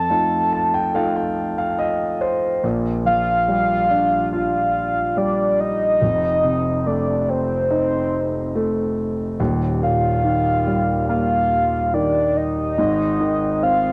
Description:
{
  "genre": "pop",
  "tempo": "71 BPM",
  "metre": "4/4",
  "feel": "straight",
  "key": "Bb major",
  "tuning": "A4 = 438 Hz",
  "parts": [
    { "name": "soft octave-layered synth lead", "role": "melody", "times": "0.0-13.9 s", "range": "C5 to A5", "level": "-22 LUFS", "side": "equal", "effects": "chorus, cassette tape" },
    { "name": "warm concert grand piano", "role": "accompaniment", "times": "0.0-13.9 s", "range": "Eb1 to A5", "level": "-23 LUFS", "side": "equal", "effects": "none" }
  ],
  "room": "moderate spring reverb, RT60 1.7 s, small room ambience",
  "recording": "home recording on cassette",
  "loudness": "-20 LUFS",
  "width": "mono",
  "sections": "0.0-2.6 A section; 2.6-13.9 B section",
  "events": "grand piano fill 0.1-2.6",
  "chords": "0.0 F7; 2.6 Bb6; 6.0 F7; 9.4 Ebadd9; 12.8 Ab"
}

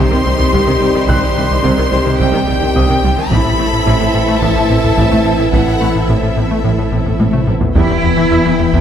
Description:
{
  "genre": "cinematic, hybrid orchestral and electronic film score",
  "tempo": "108 BPM",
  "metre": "4/4",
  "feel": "straight",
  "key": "unclear",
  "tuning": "A4 = 441 Hz",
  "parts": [
    { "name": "rich studio violin section", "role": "melody", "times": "0.0-8.8 s", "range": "E5 to C6", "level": "-21 LUFS", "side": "left 3 dB", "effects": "none" },
    { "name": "clear symphonic violin section", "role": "second line", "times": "0.0-8.8 s", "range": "G4 to G5", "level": "-22 LUFS", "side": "left 2 dB", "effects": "none" },
    { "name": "warm symphonic viola section", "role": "accompaniment", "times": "0.0-8.8 s", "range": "C3 to E4", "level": "-22 LUFS", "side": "right 1 dB", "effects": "none" },
    { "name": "dark French horn section", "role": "sustained chords", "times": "0.0-8.8 s", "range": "E3 to G4", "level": "-20 LUFS", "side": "left 4 dB", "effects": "none" },
    { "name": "ethereal airy pad", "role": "sustained chords", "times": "0.5-8.8 s", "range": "Eb3 to C5", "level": "-24 LUFS", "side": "equal", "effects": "none" },
    { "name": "mellow trombone section", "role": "sustained chords", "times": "0.0-8.0 s", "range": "Eb3 to C4", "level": "-23 LUFS", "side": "right 5 dB", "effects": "none" },
    { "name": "rubbery square bass", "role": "riff", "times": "0.0-8.8 s", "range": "C2 to A3", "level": "-19 LUFS", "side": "left 2 dB", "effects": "none" },
    { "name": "rich symphonic cello section", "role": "bass", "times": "0.0-8.8 s", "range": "A2 to E4", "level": "-21 LUFS", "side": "right 4 dB", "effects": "none" },
    { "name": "rich symphonic double bass section", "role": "bass", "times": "0.0-8.8 s", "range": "A1 to E2", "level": "-20 LUFS", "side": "right 3 dB", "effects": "none" },
    { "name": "sub bass with octave", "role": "bass", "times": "0.0-8.8 s", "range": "E1 to C2", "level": "-22 LUFS", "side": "equal", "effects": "none" },
    { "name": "bright grand piano", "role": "texture", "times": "0.0-8.8 s", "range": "C4 to F#6", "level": "-28 LUFS", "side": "left 1 dB", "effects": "tape echo" },
    { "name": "taiko ensemble", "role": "drums", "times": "0.4-8.8 s", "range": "none", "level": "-19 LUFS", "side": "equal", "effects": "none" }
  ],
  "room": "moderate scoring stage reverb, RT60 1.9 s",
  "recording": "none",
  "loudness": "-11 LUFS",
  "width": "side -9 dB against mid",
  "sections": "0.0-7.8 A section; 7.8-8.8 B section",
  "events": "drum fill 7.2-7.8",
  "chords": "0.0 Cm; 3.3 Am; 7.8 Em"
}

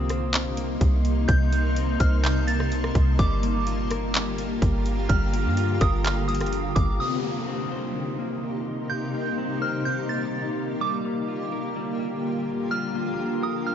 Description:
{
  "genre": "hip hop, atmospheric cloud-rap",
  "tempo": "126 BPM",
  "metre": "4/4",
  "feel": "half-time",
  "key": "C dorian",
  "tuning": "A4 = 440 Hz",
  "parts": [
    { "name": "soft synth bell", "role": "melody", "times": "0.0-13.7 s", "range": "D6 to A6", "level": "-31 LUFS", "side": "right 2 dB", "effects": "chorus, phaser, low-pass filter, ping-pong delay" },
    { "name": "granular cloud pad", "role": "sustained chords", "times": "0.0-13.7 s", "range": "C3 to A5", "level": "-29 LUFS", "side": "right 1 dB", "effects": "built-in reverb, sidechain pumping" },
    { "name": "clean electric guitar", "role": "arpeggios", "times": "0.0-13.7 s", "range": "C3 to C5", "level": "-33 LUFS", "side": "left 6 dB", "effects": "low-pass filter, ping-pong delay" },
    { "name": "soft 808-style bass", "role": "bass", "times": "0.0-7.0 s", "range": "G1 to G2", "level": "-24 LUFS", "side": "equal", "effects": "none" },
    { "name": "wind-like tuned noise texture", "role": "texture", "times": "0.0-13.7 s", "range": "G4 to C6", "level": "-37 LUFS", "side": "left 1 dB", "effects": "built-in reverb" },
    { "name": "trap drum kit", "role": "drums", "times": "0.1-6.9 s", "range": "handclaps, hi-hat, kick drum, rim click", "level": "-25 LUFS", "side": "equal", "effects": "vintage 12-bit sampler grit" },
    { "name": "downlifter", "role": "sound effects", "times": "7.0-10.8 s", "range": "none", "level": "-36 LUFS", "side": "left 4 dB", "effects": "none" }
  ],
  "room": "digital ambience",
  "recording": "nothing above 7.6 kHz",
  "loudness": "-22 LUFS",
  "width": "side -9 dB against mid",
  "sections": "0.0-7.0 A section; 7.0-13.7 B section",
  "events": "none",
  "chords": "0.0 Cm7; 3.2 Gm7; 7.0 Cm7; 10.8 Gm7"
}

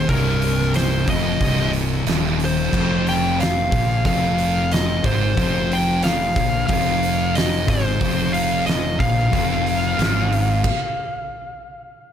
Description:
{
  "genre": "stoner and doom metal",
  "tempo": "91 BPM",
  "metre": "4/4",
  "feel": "straight",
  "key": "unclear",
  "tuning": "A4 = 440 Hz",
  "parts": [
    { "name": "fuzz lead guitar", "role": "melody", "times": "0.0-12.1 s", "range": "Bb4 to G5", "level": "-23 LUFS", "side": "left 1 dB", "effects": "distortion, ping-pong delay" },
    { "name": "thick fuzz guitar", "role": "riff", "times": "0.0-10.6 s", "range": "C2 to Bb2", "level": "-23 LUFS", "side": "left 7 dB", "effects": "distortion" },
    { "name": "thick fuzz guitar", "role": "riff", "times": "0.0-10.6 s", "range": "C2 to Bb2", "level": "-24 LUFS", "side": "right 9 dB", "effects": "distortion" },
    { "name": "fuzz fingered electric bass", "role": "bass", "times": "0.0-10.6 s", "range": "C1 to Bb1", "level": "-25 LUFS", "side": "right 1 dB", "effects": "overdrive" },
    { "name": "oversized low-tuned drum kit", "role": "drums", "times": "0.1-10.8 s", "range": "crash cymbal, hi-hat, kick drum, snare drum", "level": "-24 LUFS", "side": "right 1 dB", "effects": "none" }
  ],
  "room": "light reverb, studio reverb",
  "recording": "none",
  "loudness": "-17 LUFS",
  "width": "side -9 dB against mid",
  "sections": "0.0-12.1 A section",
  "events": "stop 10.7-12.1",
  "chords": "0.0 Cm; 2.7 F5"
}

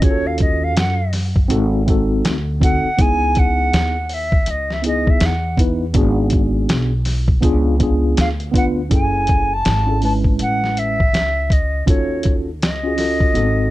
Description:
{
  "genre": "hip hop, jazz-hop",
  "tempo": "81 BPM",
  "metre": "4/4",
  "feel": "swing 61% on 16ths",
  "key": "F# dorian",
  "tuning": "A4 = 440 Hz",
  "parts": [
    { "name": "silver concert flute", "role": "melody", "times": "0.0-13.7 s", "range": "C#5 to A5", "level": "-21 LUFS", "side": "equal", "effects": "none" },
    { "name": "mellow tine electric piano", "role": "accompaniment", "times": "0.0-13.7 s", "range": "G#3 to B4", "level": "-21 LUFS", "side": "equal", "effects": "fast stereo tremolo" },
    { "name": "upright bass", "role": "bass", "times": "0.0-13.7 s", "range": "F#1 to F#2", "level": "-20 LUFS", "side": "equal", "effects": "none" },
    { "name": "lo-fi sampler-style drum kit", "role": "drums", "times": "0.0-13.6 s", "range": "hi-hat, kick drum, snare drum", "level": "-18 LUFS", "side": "equal", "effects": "none" }
  ],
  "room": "little or no reverb",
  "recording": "none",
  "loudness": "-15 LUFS",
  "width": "side -16 dB against mid",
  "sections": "0.0-8.9 A section; 8.9-13.7 B section",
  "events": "flute solo 0.0-8.9",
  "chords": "0.0 D#m7b5; 1.5 G#7b9; 3.0 C#m9; 5.9 G#m7b5; 7.4 C#7b9; 8.9 F#m9; 11.9 D#m7b5"
}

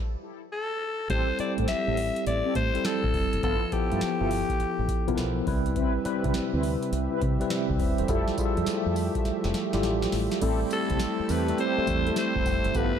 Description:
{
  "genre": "R&B, new jack swing",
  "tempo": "103 BPM",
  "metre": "4/4",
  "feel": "swing 66% on 16ths",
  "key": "unclear",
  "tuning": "A4 = 441 Hz",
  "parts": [
    { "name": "raspy alto saxophone", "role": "melody", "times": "0.5-5.5, 10.7-13.0 s", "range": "G4 to E5", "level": "-29 LUFS", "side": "left 2 dB", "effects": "none" },
    { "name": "tine electric piano", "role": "accompaniment", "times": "1.1-13.0 s", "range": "F3 to G5", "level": "-29 LUFS", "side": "equal", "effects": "medium stereo tremolo" },
    { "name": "mellow synth brass", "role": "stabs", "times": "1.1-12.9 s", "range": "B3 to B4", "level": "-34 LUFS", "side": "left 1 dB", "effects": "chorus, tremolo, ping-pong delay" },
    { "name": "deep dub fingered electric bass", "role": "bass", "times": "1.1-13.0 s", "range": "Eb1 to C3", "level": "-30 LUFS", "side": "equal", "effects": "none" },
    { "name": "booming analog drum machine", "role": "drums", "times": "1.1-13.0 s", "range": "crash cymbal, hi-hat, kick drum, snare drum, tambourine", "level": "-30 LUFS", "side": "equal", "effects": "none" },
    { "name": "brassy analog pad", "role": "sustained chords", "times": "5.8-13.0 s", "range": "C3 to E5", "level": "-35 LUFS", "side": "right 1 dB", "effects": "chorus" }
  ],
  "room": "moderate plate reverb, RT60 2.1 s",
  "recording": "dark, warm production",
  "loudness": "-24 LUFS",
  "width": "side -8 dB against mid",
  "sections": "0.0-1.1 A section; 1.1-10.4 B section; 10.4-13.0 C section",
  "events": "stop 0.0-1.1; drum fill 9.3-10.4",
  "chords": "0.0 N.C.; 1.1 Am7; 3.4 G13; 5.5 Cmaj7; 8.1 Fmaj9; 10.4 Am7"
}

